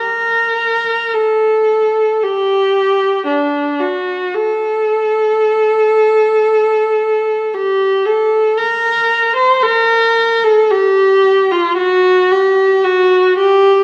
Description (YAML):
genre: classical, free, expressive piece for unaccompanied viola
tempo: 56 BPM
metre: 4/4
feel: rubato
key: unclear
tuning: A4 = 436 Hz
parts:
  - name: rich viola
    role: solo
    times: 0.0-13.8 s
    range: D4 to C5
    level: -13 LUFS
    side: equal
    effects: none
room: moderate scoring stage reverb, RT60 1.5 s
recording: dark, warm production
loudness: -13 LUFS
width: mono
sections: 0.0-13.8 A section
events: none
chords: none